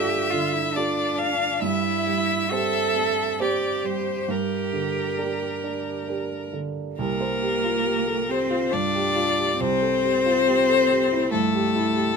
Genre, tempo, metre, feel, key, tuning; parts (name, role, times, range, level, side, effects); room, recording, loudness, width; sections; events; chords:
neoclassical piano and strings; 69 BPM; 3/4; rubato; A4 = 440 Hz
rich violin; melody; 0.0-12.2 s; A4 to F5; -24 LUFS; left 6 dB
rich cello; second line; 0.0-12.1 s; A3 to A4; -26 LUFS; right 4 dB
warm baby grand piano; accompaniment; 0.0-12.2 s; C2 to C5; -27 LUFS; right 3 dB
light reverb; minimal, uncompressed stereo recording; -21 LUFS; side -5 dB against mid
0.0-7.0 A section; 7.0-12.2 B section
0.0 Dm/G; 1.6 C/G; 4.3 Gm; 7.0 C7sus4; 9.6 Am7/C